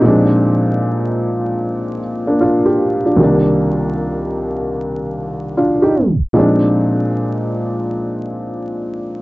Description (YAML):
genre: hip hop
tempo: 76 BPM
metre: 4/4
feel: swing 64% on 16ths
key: unclear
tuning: A4 = 441 Hz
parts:
  - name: dark upright piano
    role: solo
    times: 0.0-9.2 s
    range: C2 to G4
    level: -14 LUFS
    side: equal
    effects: cassette tape, low-pass filter
room: moderate plate reverb, RT60 3.3 s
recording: worn, warbling old tape, cassette tape, vinyl crackle, warbly pitch drift, tape stop, nothing above 7.9 kHz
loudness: -14 LUFS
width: side -20 dB against mid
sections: 0.0-6.3 A section; 6.3-9.2 B section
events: tape stop 6.0-6.3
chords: 0.0 Bb7; 3.2 Cm7; 6.3 Bb7